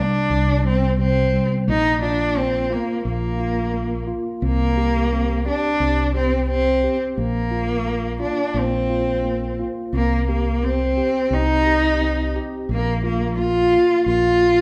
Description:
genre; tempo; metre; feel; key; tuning
acoustic folk-pop ballad; 87 BPM; 4/4; straight; C minor; A4 = 440 Hz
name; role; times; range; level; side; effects
warm cello; melody; 0.0-14.6 s; Bb3 to F4; -22 LUFS; equal; none
tine electric piano; accompaniment; 0.0-14.6 s; C3 to G4; -28 LUFS; equal; none
mellow fretless electric bass; bass; 0.3-14.6 s; Bb1 to C2; -26 LUFS; equal; none
room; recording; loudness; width
moderate recital hall reverb, RT60 1.4 s; recorded in a church or concert hall; -20 LUFS; mono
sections
0.0-14.6 A section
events
none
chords
0.0 C5; 1.7 Bb5; 4.4 C5; 7.2 Bbsus2; 9.9 Cm; 12.7 Bb5

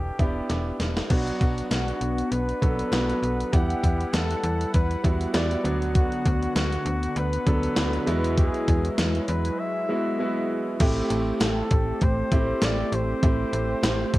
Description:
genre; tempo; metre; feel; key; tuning
1980s-style pop; 99 BPM; 4/4; swing 55% on 16ths; A dorian; A4 = 441 Hz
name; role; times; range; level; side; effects
warm flugelhorn; melody; 0.0-14.2 s; F#4 to E5; -31 LUFS; left 1 dB; cassette tape, tape echo, plate reverb
clear concert grand piano; accompaniment; 0.0-14.2 s; F#3 to F#5; -29 LUFS; right 1 dB; cassette tape, plate reverb
slap-like FM bass; bass; 0.0-14.2 s; E1 to E2; -27 LUFS; equal; none
gated 80s digital drum machine; drums; 0.2-14.2 s; crash cymbal, hi-hat, kick drum, snare drum, tambourine; -24 LUFS; equal; gated reverb, gated reverb snare, overdrive, cassette tape
brassy analog pad; sustained chords; 1.1-14.2 s; D3 to F#5; -31 LUFS; equal; chorus, cassette tape
group handclap; percussion; 1.7-14.0 s; none; -43 LUFS; left 3 dB; none
room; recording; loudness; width
moderate small room reverb, RT60 0.5 s; home recording on cassette; -22 LUFS; side -18 dB against mid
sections
0.0-1.1 A section; 1.1-10.8 B section; 10.8-14.2 C section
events
drum fill 0.5-1.1; break 9.6-10.8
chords
0.0 Em7; 1.1 Bm; 3.5 Emadd9; 5.7 Bm/D; 8.1 Eadd9; 10.8 Am7

